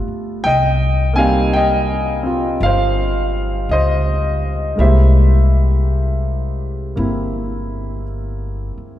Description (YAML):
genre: jazz ballad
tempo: 55 BPM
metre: 4/4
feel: swing 66% on 8ths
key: unclear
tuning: A4 = 441 Hz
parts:
  - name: warm grand piano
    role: accompaniment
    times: 0.0-9.0 s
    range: G3 to Ab5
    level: -18 LUFS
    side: equal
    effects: none
  - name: upright bass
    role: bass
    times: 0.0-8.8 s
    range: G1 to Db2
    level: -16 LUFS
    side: equal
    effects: none
room: moderate church reverb, RT60 3.2 s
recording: recorded in a church or concert hall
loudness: -14 LUFS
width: side -12 dB against mid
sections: 0.0-9.0 A section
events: none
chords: 0.4 Cm7; 4.8 C7b13